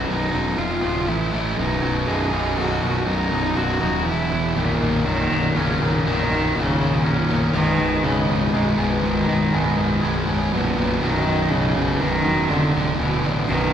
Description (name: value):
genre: post-rock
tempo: 121 BPM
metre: 3/4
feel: straight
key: unclear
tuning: A4 = 440 Hz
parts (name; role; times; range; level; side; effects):
- clear cello; melody; 0.0-13.7 s; A#2 to G#4; -23 LUFS; equal; none
- twangy electric guitar; arpeggios; 0.0-10.5 s; B1 to G#4; -30 LUFS; left 1 dB; none
- vibraphone with hard mallets; arpeggios; 0.0-13.7 s; A#4 to D#5; -32 LUFS; right 3 dB; none
- fuzz guitar; riff; 0.0-13.7 s; B1 to A3; -22 LUFS; equal; distortion
- fuzz picked electric bass; bass; 0.0-13.7 s; B0 to A1; -26 LUFS; equal; overdrive
room: wet recital hall reverb, RT60 1.5 s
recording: recorded in a church or concert hall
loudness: -18 LUFS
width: side -9 dB against mid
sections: 0.0-4.6 A section; 4.6-13.7 B section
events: build-up 0.0-4.6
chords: 0.0 B; 0.6 F5; 1.1 A5; 1.6 Bmaj7; 4.1 E5; 4.6 D#m7/B; 7.5 G#m/B; 10.5 Bmaj7; 12.5 F5; 13.0 D5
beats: | 0.09 0.59 1.08 | 1.58 2.08 2.58 | 3.07 3.57 4.07 | 4.56 5.06 5.56 | 6.05 6.55 7.04 | 7.54 8.04 8.53 | 9.03 9.53 10.02 | 10.52 11.01 11.51 | 12.01 12.50 12.99 | 13.49